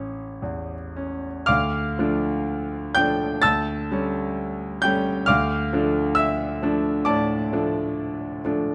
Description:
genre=classical, romantic nocturne for solo piano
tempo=55-68 BPM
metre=4/4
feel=rubato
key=D minor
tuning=A4 = 437 Hz
part: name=clear concert grand piano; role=solo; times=0.0-8.7 s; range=A1 to A6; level=-24 LUFS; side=equal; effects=none
room=moderate recital hall reverb, RT60 1.7 s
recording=close, detailed microphones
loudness=-24 LUFS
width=mono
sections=0.0-1.5 A section; 1.5-8.7 B section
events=none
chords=0.0 A; 1.5 Dm; 3.4 A7/D; 5.3 Dm

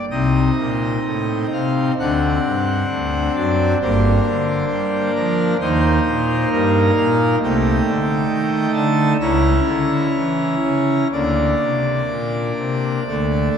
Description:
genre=classical, chorale-style piece for pipe organ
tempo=65 BPM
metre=4/4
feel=uneven beats, rubato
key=unclear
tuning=A4 = 440 Hz
part: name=pipe organ, full organ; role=solo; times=0.0-13.6 s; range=G1 to A#5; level=-16 LUFS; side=equal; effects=none
room=wet church reverb, RT60 3.1 s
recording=dark, warm production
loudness=-16 LUFS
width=side -7 dB against mid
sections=0.1-13.6 A section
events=none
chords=0.1 Adim/C; 2.0 D7; 3.8 Gm; 5.6 Eb; 7.4 Am7b5/C; 9.2 C#m6; 11.1 Bbadd9/D; 13.1 D5

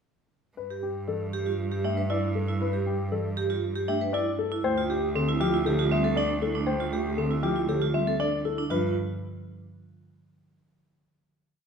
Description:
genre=classical, minimalist pattern music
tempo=118 BPM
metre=4/4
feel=straight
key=G mixolydian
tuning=A4 = 441 Hz
part: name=warm grand piano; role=melody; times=0.6-8.9 s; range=G4 to E5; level=-30 LUFS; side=left 8 dB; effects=none
part: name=clear cello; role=bass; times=0.6-8.9 s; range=D2 to G2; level=-32 LUFS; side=right 2 dB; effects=none
part: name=vibraphone with hard mallets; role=arpeggios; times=0.7-8.9 s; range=C4 to B4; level=-29 LUFS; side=right 6 dB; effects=none
part: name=folk marimba with medium mallets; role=accompaniment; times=1.1-8.9 s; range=D3 to A3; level=-32 LUFS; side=left 1 dB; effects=none
room=wet recital hall reverb, RT60 1.6 s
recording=recorded in a church or concert hall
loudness=-25 LUFS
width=side -6 dB against mid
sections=0.6-8.7 A section; 8.7-10.7 final chord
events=none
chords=0.6 N.C.; 4.6 Dm9; 8.7 G7(no3)

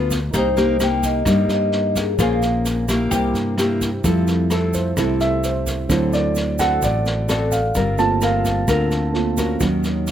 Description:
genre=bossa nova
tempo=129 BPM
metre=4/4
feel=straight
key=F major from 4.0 s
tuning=A4 = 441 Hz
part: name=vibraphone with soft mallets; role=melody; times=0.0-2.4 s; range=Ab4 to G5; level=-22 LUFS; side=left 3 dB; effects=none
part: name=oud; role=second line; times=0.0-3.8 s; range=Eb4 to G4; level=-28 LUFS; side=equal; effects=none
part: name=dark grand piano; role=accompaniment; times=0.0-10.1 s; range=F#3 to A5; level=-22 LUFS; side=right 3 dB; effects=none
part: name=nylon-string guitar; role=accompaniment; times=0.0-10.1 s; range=A2 to C5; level=-22 LUFS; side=left 2 dB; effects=none
part: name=fingered electric bass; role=bass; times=0.0-10.1 s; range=G1 to G2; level=-23 LUFS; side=equal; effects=none
part: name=vintage brush drum kit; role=drums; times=0.1-10.1 s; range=kick drum, rim click, snare drum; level=-28 LUFS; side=equal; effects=none
part: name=tube shaker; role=percussion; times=0.1-10.1 s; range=none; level=-34 LUFS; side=right 6 dB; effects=none
room=little or no reverb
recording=close, detailed microphones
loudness=-17 LUFS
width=side -10 dB against mid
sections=0.0-4.0 A section; 4.0-10.1 B section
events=grand piano solo 4.0-10.1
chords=0.3 Cm7; 2.2 Bbm9; 3.1 C7; 4.0 Fmaj7; 5.9 D7; 7.8 Gm11; 9.6 Ebm7

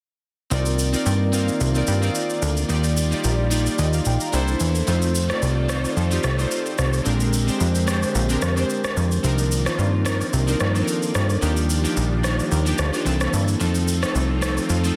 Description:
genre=amapiano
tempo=110 BPM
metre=4/4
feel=swing 55% on 16ths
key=unclear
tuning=A4 = 440 Hz
part: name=glassy digital keys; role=accompaniment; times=0.5-15.0 s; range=E3 to Bb5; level=-27 LUFS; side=equal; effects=chorus
part: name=string machine, violas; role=sustained chords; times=0.5-15.0 s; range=D3 to D5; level=-33 LUFS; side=equal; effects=ensemble chorus
part: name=plucky analog bass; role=bass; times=0.5-14.9 s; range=Bb1 to G2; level=-24 LUFS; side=equal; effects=none
part: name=electronic shaker and rim click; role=drums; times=0.5-15.0 s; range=none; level=-30 LUFS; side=equal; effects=soft clipping on snare
room=light reverb, digital ambience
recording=dense, heavily limited modern master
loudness=-21 LUFS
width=mono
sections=0.5-15.0 A section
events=none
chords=0.5 Cm11; 2.7 Ebmaj9; 4.3 C13; 4.9 F7; 7.1 Bb13; 9.2 Cm11; 11.4 Ebmaj9; 13.1 C13; 13.6 F7

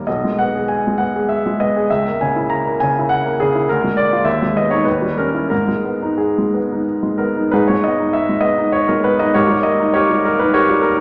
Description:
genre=classical, romantic character piece for solo piano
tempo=88-107 BPM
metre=3/4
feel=rubato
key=G# minor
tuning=A4 = 440 Hz
part: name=clear baby grand piano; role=solo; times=0.0-11.0 s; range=B1 to A#5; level=-17 LUFS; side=equal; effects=none
room=wet recital hall reverb, RT60 1.4 s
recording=none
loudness=-17 LUFS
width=mono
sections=0.0-7.5 A section; 7.5-11.0 A section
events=none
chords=0.1 G#m/B; 1.9 A#dim/C#; 3.7 A#7/D; 4.3 G#m/D#; 4.9 D#7b9; 5.5 G#m; 9.3 D#/G#

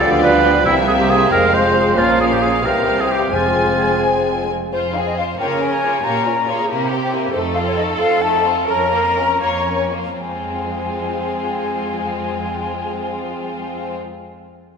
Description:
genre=quick classical-period movement for symphony orchestra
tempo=75-94 BPM (dotted quarters)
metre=6/8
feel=rubato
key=F minor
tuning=A4 = 440 Hz
part: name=rich studio violin section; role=melody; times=0.0-14.0 s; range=F4 to Ab5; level=-26 LUFS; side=left 3 dB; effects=none
part: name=clear studio violin section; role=second line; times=0.0-14.0 s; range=A3 to Ab4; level=-24 LUFS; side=left 3 dB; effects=none
part: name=concert flute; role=second line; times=0.0-14.0 s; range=C5 to Bb5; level=-22 LUFS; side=left 2 dB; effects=none
part: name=mellow clarinet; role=second line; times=0.0-4.0 s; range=E4 to C5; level=-24 LUFS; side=equal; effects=none
part: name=warm oboe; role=second line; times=0.0-4.0 s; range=E4 to C5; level=-18 LUFS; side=right 2 dB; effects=none
part: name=mellow bassoon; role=accompaniment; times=0.0-4.5 s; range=E3 to Bb3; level=-24 LUFS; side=right 2 dB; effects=none
part: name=rich studio viola section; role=accompaniment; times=0.0-14.0 s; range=F3 to Db5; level=-24 LUFS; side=right 2 dB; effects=none
part: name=warm French horn section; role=sustained chords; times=0.0-4.5 s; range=G3 to Ab4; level=-22 LUFS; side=left 3 dB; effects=none
part: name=dark studio cello section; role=bass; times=0.0-14.0 s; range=F2 to D3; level=-26 LUFS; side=right 4 dB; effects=none
part: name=rich studio double bass section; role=bass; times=0.0-4.5 s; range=F1 to D2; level=-26 LUFS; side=right 3 dB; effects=none
part: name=timpani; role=percussion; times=0.7-1.3, 3.3-4.0 s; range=F2 to C3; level=-32 LUFS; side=equal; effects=none
room=wet concert hall reverb, RT60 2.2 s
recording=minimal, uncompressed stereo recording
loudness=-15 LUFS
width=side -6 dB against mid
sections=0.0-4.7 A section; 4.7-10.2 B section; 10.2-13.2 C section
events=slowing down 6.7-10.2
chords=0.0 G7/D; 0.7 C7; 1.3 Fm; 2.0 Bbm; 2.6 C7; 3.3 Fm; 5.4 Bbm/Db; 6.0 Bbm; 6.7 C7; 7.3 F7; 8.7 Bbm/F; 10.2 Fm

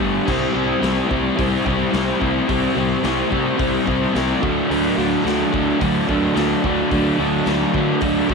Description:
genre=garage rock duo or trio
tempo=108 BPM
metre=4/4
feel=straight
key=unclear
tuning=A4 = 437 Hz
part: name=crunchy overdriven guitar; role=riff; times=0.0-8.3 s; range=G2 to E4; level=-17 LUFS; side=equal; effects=none
part: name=fuzz fingered electric bass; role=bass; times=0.0-8.3 s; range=G1 to D3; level=-27 LUFS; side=right 1 dB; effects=overdrive
part: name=raw garage drum kit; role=drums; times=0.0-8.3 s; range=crash cymbal, hi-hat, kick drum, snare drum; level=-27 LUFS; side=left 1 dB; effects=none
room=light reverb, small room ambience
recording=1960s-style stereo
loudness=-16 LUFS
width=side -4 dB against mid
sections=0.0-8.3 A section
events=none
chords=0.3 C; 4.4 D

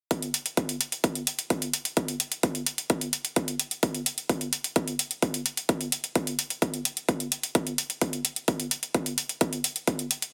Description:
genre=EDM, festival progressive house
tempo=129 BPM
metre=4/4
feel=straight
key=none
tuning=none
part: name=electronic hi-hat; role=drums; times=0.1-10.3 s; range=none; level=-30 LUFS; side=equal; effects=none
part: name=electronic kick drum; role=drums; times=0.1-10.0 s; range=none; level=-29 LUFS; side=equal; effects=high-pass filter on kick, high-pass filter on room
room=little or no reverb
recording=dense, heavily limited modern master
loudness=-28 LUFS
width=mono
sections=0.1-10.3 A section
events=none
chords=none

